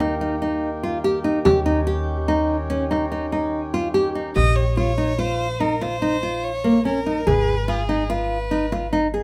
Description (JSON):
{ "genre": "contemporary instrumental, chamber music in an uneven meter", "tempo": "144 BPM", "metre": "7/4", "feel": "straight", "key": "Eb mixolydian", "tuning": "A4 = 436 Hz", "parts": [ { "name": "pedal harmonium", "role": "sustained chords", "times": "0.0-4.3 s", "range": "Eb3 to G4", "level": "-31 LUFS", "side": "equal", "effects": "none" }, { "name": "nylon-string guitar", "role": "arpeggios", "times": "0.0-9.2 s", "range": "Bb3 to Ab4", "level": "-24 LUFS", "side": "equal", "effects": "none" }, { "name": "upright bass", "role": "bass", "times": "0.0-9.2 s", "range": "Ab1 to Eb2", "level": "-29 LUFS", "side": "equal", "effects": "none" }, { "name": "frame drum", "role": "percussion", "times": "0.0-9.0 s", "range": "none", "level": "-30 LUFS", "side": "equal", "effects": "none" }, { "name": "rich violin", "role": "melody", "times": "4.4-8.9 s", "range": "Ab4 to Eb5", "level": "-28 LUFS", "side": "equal", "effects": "none" } ], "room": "light reverb", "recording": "close, detailed microphones", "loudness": "-22 LUFS", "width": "mono", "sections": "0.0-4.4 A section; 4.4-9.2 B section", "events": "none", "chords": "0.0 Eb; 1.5 Eb7; 4.4 Bbm; 7.3 Abm" }